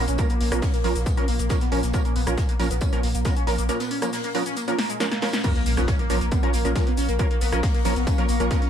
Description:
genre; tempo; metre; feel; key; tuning
driving peak-time techno; 137 BPM; 4/4; straight; Bb phrygian; A4 = 443 Hz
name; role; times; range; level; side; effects
rave stab; stabs; 0.0-8.6 s; F3 to Bb4; -28 LUFS; right 3 dB; chorus, built-in reverb, sidechain pumping, dub echo
saturated sub bass; bass; 0.0-8.5 s; Bb1; -26 LUFS; equal; overdrive, sidechain pumping, low-pass filter
swarming drone; drone; 0.0-5.5 s; Bb2 to Bb3; -36 LUFS; left 1 dB; built-in reverb, sidechain pumping
overdriven synth lead; riff; 0.1-8.7 s; Ab3 to Db4; -28 LUFS; left 1 dB; phaser, tube saturation, wide subtle chorus, sidechain pumping, dub echo
loose indie drum kit; drums; 0.1-8.7 s; hi-hat, snare drum, tambourine; -40 LUFS; equal; sidechain pumping on hats, high-pass filter on hats, small room ambience, high-pass filter on snare, sidechain pumping on perc, high-pass filter on perc, high-pass filter on room
techno drum kit; drums; 0.1-8.7 s; crash cymbal, hi-hat, rim click, shaker, snare drum; -31 LUFS; left 1 dB; overdrive, sidechain pumping on hats, small room ambience, sidechain pumping on perc, sidechain pumping on cymbals
electronic kick drum; drums; 0.2-8.6 s; none; -23 LUFS; equal; overdrive, small room ambience
impact; sound effects; 5.4-7.2 s; none; -33 LUFS; equal; none
granular cloud pad; texture; 6.3-8.7 s; Bb4 to Db6; -33 LUFS; equal; built-in reverb, sidechain pumping
room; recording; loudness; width
little or no reverb; dark, warm production; -20 LUFS; side -9 dB against mid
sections
0.0-5.4 A section; 5.4-8.7 B section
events
filter sweep on analog synth lead 0.0-5.4; drum fill 4.8-5.4; drop 5.4-8.7; impact 5.4-7.2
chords
0.0 Bbm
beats
| 0.19 0.62 1.06 1.50 | 1.94 2.38 2.81 3.25 | 3.69 4.13 4.57 5.00 | 5.44 5.88 6.32 6.75 | 7.19 7.63 8.07 8.51

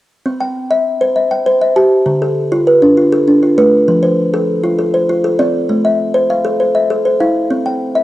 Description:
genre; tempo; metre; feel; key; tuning
southern african traditional; 132 BPM (dotted quarters); 12/8; straight; C major; A4 = 435 Hz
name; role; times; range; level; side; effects
kalimba; arpeggios; 0.3-8.0 s; D3 to A5; -11 LUFS; equal; cassette tape
room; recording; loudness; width
light reverb; home recording on cassette; -11 LUFS; side -15 dB against mid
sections
0.3-8.0 A section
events
none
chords
0.3 C; 2.1 Dm; 3.9 F; 5.7 Am; 7.5 C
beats
| 0.26 0.71 1.17 1.62 | 2.07 2.52 2.98 3.43 | 3.88 4.33 4.79 5.24 | 5.70 6.15 6.60 7.06 | 7.51 7.97

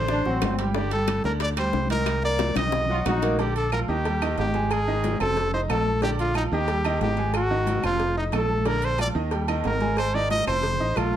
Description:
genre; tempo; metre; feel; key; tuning
latin, salsa; 182 BPM; 4/4; straight; Bb major; A4 = 440 Hz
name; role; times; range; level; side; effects
warm trumpet; melody; 0.0-11.2 s; Eb4 to Eb5; -26 LUFS; equal; none
clear grand piano; accompaniment; 0.0-11.2 s; D3 to Eb6; -29 LUFS; right 2 dB; none
fingered electric bass; bass; 0.0-11.2 s; F1 to Eb2; -27 LUFS; equal; none
bright trombone section; second line; 0.1-0.7, 2.9-3.4 s; C4 to F4; -28 LUFS; equal; none
bongos and cowbell; percussion; 0.1-11.1 s; none; -34 LUFS; left 5 dB; none
congas; percussion; 0.1-11.2 s; none; -32 LUFS; left 1 dB; none
claves; percussion; 0.4-11.1 s; none; -38 LUFS; left 3 dB; none
timbales and agogo bells; percussion; 0.4-11.1 s; none; -34 LUFS; right 7 dB; none
room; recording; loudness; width
moderate studio reverb, RT60 0.5 s; none; -22 LUFS; side -10 dB against mid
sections
0.0-3.4 A section; 3.4-11.2 B section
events
drum fill 2.4-3.4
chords
0.0 D7; 0.8 G5; 2.1 Cm9; 2.7 B; 3.4 Bb; 4.0 Eb; 4.7 Ab; 5.4 F7; 6.0 Bb; 6.7 Eb; 7.3 Ab7; 8.0 F7; 8.7 Bb; 9.3 Eb; 10.0 Ab; 10.6 F7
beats
0.09 0.42 | 0.75 1.08 1.41 1.74 | 2.07 2.40 2.73 3.06 | 3.39 3.72 4.05 4.38 | 4.71 5.04 5.37 5.70 | 6.03 6.36 6.68 7.01 | 7.34 7.67 8.00 8.33 | 8.66 8.99 9.32 9.65 | 9.98 10.30 10.63 10.96

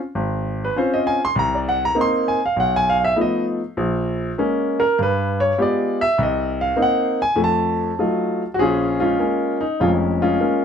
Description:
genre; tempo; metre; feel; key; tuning
solo jazz; 100 BPM; 4/4; swing 67% on 8ths; Bb minor; A4 = 443 Hz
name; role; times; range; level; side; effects
warm grand piano; solo; 0.2-10.6 s; F1 to C6; -17 LUFS; equal; none
room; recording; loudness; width
moderate studio reverb, RT60 0.5 s; band playing live in one room; -17 LUFS; side -7 dB against mid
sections
0.0-8.6 A section; 8.6-10.6 B section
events
grand piano solo 0.0-8.6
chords
0.0 Dbmaj7; 1.4 Cm9; 2.6 B7#11; 3.8 Bbm7; 5.0 G7b9; 6.2 Cm7b5; 7.4 F7b9; 8.6 Bbm7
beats
0.16 0.76 | 1.36 1.97 2.57 3.17 | 3.77 4.37 4.97 5.58 | 6.18 6.78 7.38 7.99 | 8.59 9.19 9.80 10.40

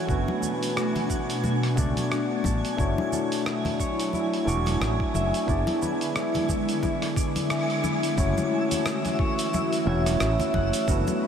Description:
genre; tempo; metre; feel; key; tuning
sunset chillout; 89 BPM; 4/4; swing 57% on 16ths; F# minor; A4 = 440 Hz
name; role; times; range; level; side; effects
overdriven tine electric piano; accompaniment; 0.0-11.3 s; A3 to C#6; -29 LUFS; moving between left 6 dB and right 5 dB; auto-pan, analog delay
ethereal airy pad; sustained chords; 0.0-11.3 s; B2 to F#4; -30 LUFS; right 1 dB; ensemble chorus, built-in reverb
concert harp; arpeggios; 0.0-11.3 s; E4 to A5; -30 LUFS; left 3 dB; analog delay
twinkling granular texture; texture; 0.0-11.3 s; E5 to G#5; -36 LUFS; right 1 dB; built-in reverb
fretless electric bass; bass; 0.1-11.0 s; E1 to C#2; -27 LUFS; equal; none
dusty soul sampler-style drum kit; drums; 0.1-11.2 s; hi-hat, rim click, shaker; -33 LUFS; right 1 dB; none
electronic kick drum; drums; 0.1-11.0 s; none; -28 LUFS; equal; none
congas; percussion; 0.3-11.2 s; none; -35 LUFS; left 2 dB; none
room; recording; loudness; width
wet huge ambient reverb, RT60 8.3 s; dreamy mix soaked in reverb; -23 LUFS; side -8 dB against mid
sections
0.0-8.2 A section; 8.2-11.3 B section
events
band accent 7.5-7.8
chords
0.1 Bm7/F#; 2.8 Dmaj9/F#; 5.5 E7/F#; 8.2 F#m7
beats
| 0.09 0.77 1.44 2.11 | 2.79 3.46 4.14 4.81 | 5.49 6.16 6.83 7.51 | 8.18 8.86 9.53 10.20 | 10.88

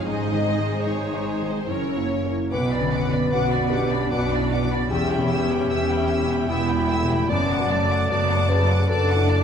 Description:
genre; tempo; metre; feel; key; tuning
cinematic, emotional film score for orchestra; 76 BPM; 3/4; rubato; B minor; A4 = 440 Hz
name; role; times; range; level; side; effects
warm studio violin section; melody; 0.0-9.4 s; C5 to E6; -32 LUFS; left 4 dB; none
warm studio violin section; second line; 0.0-9.4 s; Ab4 to D6; -28 LUFS; left 2 dB; none
warm concert grand piano; accompaniment; 0.0-9.4 s; B1 to E5; -28 LUFS; left 1 dB; none
warm studio viola section; accompaniment; 0.0-9.4 s; C#3 to F#4; -29 LUFS; right 2 dB; none
concert harp; arpeggios; 0.0-9.4 s; E2 to C6; -29 LUFS; left 5 dB; none
rich studio cello section; bass; 0.0-9.4 s; E2 to B2; -27 LUFS; right 2 dB; none
warm studio double bass section; bass; 0.0-9.4 s; E1 to B1; -30 LUFS; right 3 dB; none
dark clarinet; second line; 2.5-9.4 s; E4 to D5; -25 LUFS; left 2 dB; none
room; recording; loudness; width
wet scoring stage reverb, RT60 1.7 s; minimal, uncompressed stereo recording, lossy compression artefacts; -20 LUFS; side -7 dB against mid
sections
0.0-2.5 A section; 2.5-9.4 A section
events
none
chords
0.1 Ab; 1.7 Gb7; 2.5 Bm; 4.9 Em; 7.3 D/F#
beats
| 0.07 0.86 1.69 | 2.52 3.32 4.11 | 4.90 5.69 6.48 | 7.30 8.10 8.89

